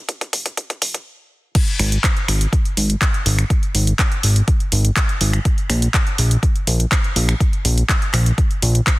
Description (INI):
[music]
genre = progressive house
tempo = 123 BPM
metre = 4/4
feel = straight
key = unclear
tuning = A4 = 440 Hz
[part]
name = fat analog bass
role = bass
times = 0.0-8.8 s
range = F1 to Bb1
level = -16 LUFS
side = equal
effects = sidechain pumping
[part]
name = big-room dance drum kit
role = drums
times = 0.1-9.0 s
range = crash cymbal, finger snaps, handclaps, hi-hat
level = -21 LUFS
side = equal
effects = overdrive
[part]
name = electronic kick drum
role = drums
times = 0.1-9.0 s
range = none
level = -17 LUFS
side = equal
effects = overdrive, high-pass filter on kick
[sound]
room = digital ambience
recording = dense, heavily limited modern master, high-pass filter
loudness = -15 LUFS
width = side -20 dB against mid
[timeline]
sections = 0.0-1.6 A section; 1.6-9.0 B section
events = build-up 0.0-1.6; drum fill 0.0-1.1; filter sweep 0.0-1.6; stop 1.1-1.6; drop 1.6-9.0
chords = none